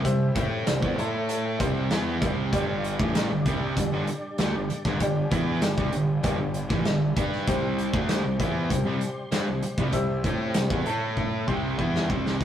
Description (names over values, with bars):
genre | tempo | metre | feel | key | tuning
classic rock | 97 BPM | 4/4 | straight | unclear | A4 = 445 Hz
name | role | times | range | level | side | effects
warm upright piano | accompaniment | 0.0-12.2 s | G4 to C6 | -33 LUFS | left 2 dB | none
tonewheel organ | sustained chords | 0.0-12.4 s | G3 to C6 | -38 LUFS | equal | none
distorted electric guitar | riff | 0.0-12.4 s | G2 to A4 | -32 LUFS | left 4 dB | distortion
overdriven electric guitar | riff | 0.0-12.4 s | D2 to A4 | -29 LUFS | right 4 dB | none
fuzz picked electric bass | bass | 0.0-12.4 s | G1 to A2 | -32 LUFS | equal | overdrive
big rock drum kit | drums | 0.0-12.4 s | hi-hat, kick drum, snare drum | -28 LUFS | equal | none
room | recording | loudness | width
moderate stone room reverb, RT60 1.1 s | rough rehearsal-room recording | -23 LUFS | side -10 dB against mid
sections
0.0-12.4 A section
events
upright piano fill 0.7-2.5; drum fill 11.2-12.4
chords
0.0 C5; 1.0 A5; 1.6 C5; 2.5 G5; 7.5 C5; 10.9 A5; 11.5 C5